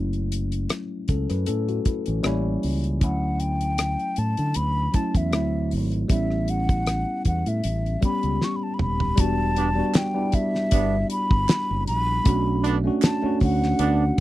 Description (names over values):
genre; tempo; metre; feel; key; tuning
lush 1970s-style soul; 78 BPM; 4/4; swing 54% on 16ths; E dorian; A4 = 440 Hz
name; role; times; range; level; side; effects
tine electric piano; accompaniment; 0.0-14.2 s; E3 to B4; -26 LUFS; equal; phaser
fingered electric bass; bass; 0.0-14.1 s; D#1 to D3; -25 LUFS; equal; none
damped 70s drum kit; drums; 0.1-14.2 s; hi-hat, kick drum, rim click, snare drum, toms; -22 LUFS; equal; none
mellow hollow concert flute; melody; 3.0-14.2 s; E5 to C#6; -27 LUFS; left 1 dB; none
warm trombone section; stabs; 9.6-14.0 s; G3 to D4; -26 LUFS; right 7 dB; none
group handclap; percussion; 9.9-13.2 s; none; -36 LUFS; right 14 dB; none
room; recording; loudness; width
little or no reverb; dry, close 1970s-style studio recording; -21 LUFS; side -15 dB against mid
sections
0.0-9.2 A section; 9.2-14.2 B section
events
drum fill 8.4-9.2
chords
0.0 F#m7; 2.2 A7b9; 3.0 Dmaj9; 5.3 D9; 6.1 A7; 9.2 Em7; 12.3 Bm7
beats
0.70 1.47 2.25 | 3.02 3.79 4.56 5.33 | 6.10 6.87 7.64 8.41 | 9.18 9.95 10.72 11.49 | 12.26 13.03 13.79